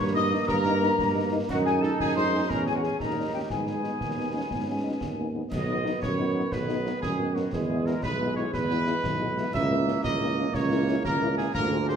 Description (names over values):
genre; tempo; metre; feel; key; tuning
military-style march for wind band; 119 BPM (dotted quarters); 6/8; straight; G# minor; A4 = 440 Hz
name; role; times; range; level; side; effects
dark trumpet section; melody; 0.0-12.0 s; F#4 to E5; -31 LUFS; right 1 dB; none
mellow small flute group; second line; 0.0-5.3 s; F#5 to D#6; -31 LUFS; left 6 dB; none
warm trombone section; sustained chords; 0.0-12.0 s; D#3 to D#4; -33 LUFS; right 3 dB; none
warm tuba; bass; 0.0-12.0 s; B1 to G#2; -28 LUFS; right 3 dB; none
mellow French horn section; accompaniment; 0.1-11.9 s; F#3 to G#4; -34 LUFS; left 4 dB; none
concert snare drum, concert bass drum and clash cymbals; drums; 0.5-12.0 s; none; -35 LUFS; left 2 dB; none
dark euphonium; second line; 4.0-5.5 s; A#3 to C#4; -35 LUFS; right 2 dB; none
room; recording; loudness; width
wet recital hall reverb, RT60 1.5 s; none; -24 LUFS; side -7 dB against mid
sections
0.0-5.5 A section; 5.5-12.0 B section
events
none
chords
0.0 D#/G; 1.5 G#7/F#; 2.5 C#m/E; 3.0 D#7; 3.5 G#m; 5.5 B; 7.5 E; 9.5 A#dim/C#